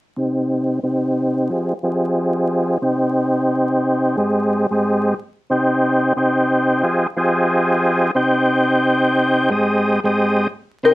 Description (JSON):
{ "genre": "hip hop", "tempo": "90 BPM", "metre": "4/4", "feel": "swing 63% on 16ths", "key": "C minor", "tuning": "A4 = 439 Hz", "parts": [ { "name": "tonewheel organ", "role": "accompaniment", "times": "0.2-10.9 s", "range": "Ab2 to G5", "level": "-16 LUFS", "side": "equal", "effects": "chorus vibrato, high-pass filter, low-pass filter" }, { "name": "vibraphone with soft mallets", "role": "melody", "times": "10.9 s", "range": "Bb4", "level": "-10 LUFS", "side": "left 4 dB", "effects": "high-pass filter, low-pass filter" } ], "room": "moderate studio ambience, RT60 0.5 s", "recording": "vinyl crackle", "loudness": "-16 LUFS", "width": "side -17 dB against mid", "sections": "0.2-10.8 A section", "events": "filter sweep on tonewheel organ 0.2-10.8", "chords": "0.2 Cm; 1.5 Fm7; 2.8 Cm; 4.2 Abmaj7; 5.5 Cm; 6.8 Fm7; 8.2 Cm; 9.5 Abmaj7", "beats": "| 0.17 0.84 1.50 2.17 | 2.84 3.50 4.17 4.84 | 5.50 6.17 6.84 7.50 | 8.17 8.84 9.50 10.17 | 10.84" }